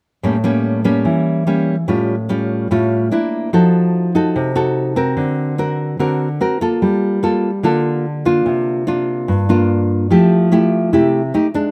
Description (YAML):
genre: bossa nova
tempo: 146 BPM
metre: 4/4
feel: straight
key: F major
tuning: A4 = 443 Hz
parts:
  - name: nylon-string guitar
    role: solo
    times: 0.2-11.7 s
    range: G2 to Bb4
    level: -16 LUFS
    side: equal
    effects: none
room: light reverb, studio ambience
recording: rough home demo mix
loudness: -16 LUFS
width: mono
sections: 0.2-11.7 A section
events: none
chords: 0.2 A7b9; 1.9 Aaug7; 3.1 Bb; 3.5 F7b9; 5.2 Daug7; 6.4 Fadd11; 6.8 Gm9; 8.5 C9sus4; 10.1 Fmaj9